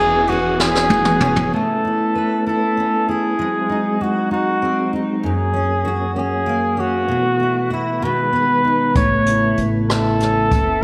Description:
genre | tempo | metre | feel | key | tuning
six-eight pop ballad | 64 BPM (dotted quarters) | 6/8 | straight | unclear | A4 = 439 Hz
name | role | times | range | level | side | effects
clear flugelhorn | melody | 0.0-10.8 s | E4 to C#5 | -21 LUFS | equal | none
fingerpicked steel-string acoustic guitar | accompaniment | 0.0-10.8 s | F#2 to B4 | -23 LUFS | equal | double-tracked
mellow tonewheel organ | sustained chords | 0.0-10.8 s | C#3 to G#4 | -28 LUFS | equal | chorus vibrato, fast rotary speaker
upright bass | bass | 0.0-1.5, 9.0-10.8 s | E1 to A1 | -27 LUFS | equal | none
jazz brush drum kit | drums | 0.3-1.5, 9.0-10.7 s | hi-hat, kick drum, ride cymbal, rim click, snare drum, toms | -23 LUFS | equal | gated reverb
room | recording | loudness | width
wet lush hall reverb, RT60 1.9 s, small room ambience | bright 1980s-style digital production | -18 LUFS | mono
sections
0.0-1.5 A section; 1.5-10.8 B section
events
drum fill 0.6-1.5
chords
0.0 E6; 1.5 Aadd9; 3.4 G#7; 5.2 F#; 7.1 B7sus4; 8.0 B6; 9.0 Aadd9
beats
0.59 | 1.52 2.46 | 3.38 4.30 | 5.23 6.15 | 7.08 8.02 | 8.96 9.90 | 10.83

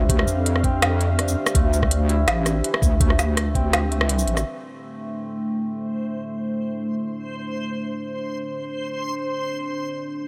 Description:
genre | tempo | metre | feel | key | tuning
half-time drum and bass | 165 BPM | 4/4 | half-time | A minor | A4 = 440 Hz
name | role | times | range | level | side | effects
dark analog pad | sustained chords | 0.0-10.3 s | A3 to F5 | -31 LUFS | equal | chorus, sidechain pumping
santur | arpeggios | 0.0-8.3 s | E3 to E4 | -33 LUFS | equal | delay
deep soft wobble bass | bass | 0.0-4.4 s | A1 to F2 | -24 LUFS | equal | chorus, tube saturation
electronic kick drum | drums | 0.1-3.6 s | none | -23 LUFS | equal | small room ambience
organic electronic drum kit | drums | 0.1-4.4 s | hi-hat, rim click, shaker, snare drum | -26 LUFS | equal | small room ambience
backwards swelling texture | texture | 5.9-10.3 s | C5 | -33 LUFS | equal | built-in reverb
room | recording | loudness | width
light reverb, digital ambience | none | -23 LUFS | mono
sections
0.0-4.5 A section; 4.5-10.3 B section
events
drop 0.0-4.5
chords
0.0 Dm; 4.5 Am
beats
| 0.09 0.46 0.82 1.18 | 1.55 1.91 2.27 2.64 | 3.00 3.37 3.73 4.09 | 4.46 4.82 5.18 5.55 | 5.91 6.28 6.64 7.00 | 7.37 7.73 8.09 8.46 | 8.82 9.18 9.55 9.91 | 10.28

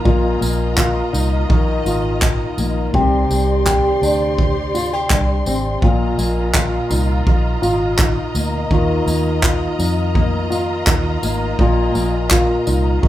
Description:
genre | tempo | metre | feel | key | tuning
acoustic pop | 83 BPM | 4/4 | straight | unclear | A4 = 444 Hz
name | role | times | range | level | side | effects
flamenco guitar | accompaniment | 0.0-13.1 s | Bb2 to G4 | -19 LUFS | left 2 dB | none
warm studio string section | sustained chords | 0.0-13.1 s | F4 to C6 | -24 LUFS | equal | none
vintage muted fingered electric bass | bass | 0.1-13.1 s | Ab1 to F2 | -20 LUFS | equal | none
natural country drum kit | drums | 0.1-13.1 s | handclaps, kick drum, tambourine | -18 LUFS | equal | none
room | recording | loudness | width
moderate large studio reverb, RT60 0.9 s | band playing live in one room | -15 LUFS | side -13 dB against mid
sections
0.0-13.1 A section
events
none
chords
0.1 Bbsus4; 2.9 Csus2; 5.8 Bbsus4; 8.7 Ebsus2; 11.6 Bbsus4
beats
| 0.06 0.78 1.50 2.22 | 2.94 3.66 4.38 5.10 | 5.82 6.54 7.26 7.99 | 8.71 9.43 10.15 10.87 | 11.59 12.31 13.04

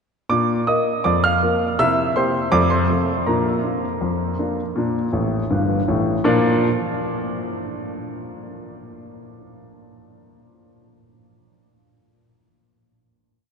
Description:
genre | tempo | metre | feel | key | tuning
ragtime piano | 81 BPM | 2/4 | straight | Bb major | A4 = 440 Hz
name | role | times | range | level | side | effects
warm grand piano | solo | 0.3-6.7 s | G1 to F6 | -18 LUFS | equal | none
room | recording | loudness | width
wet cathedral reverb, RT60 6.2 s | in a vast, echoing space, nothing above 10.6 kHz | -18 LUFS | side -6 dB against mid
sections
0.3-6.3 A section; 6.3-7.7 final chord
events
grand piano fill 5.1-6.3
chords
0.3 Bb; 1.8 C7; 2.5 F; 3.3 Bb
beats
| 0.30 1.05 | 1.79 2.53 | 3.27 4.01 | 4.76 5.51 | 6.25

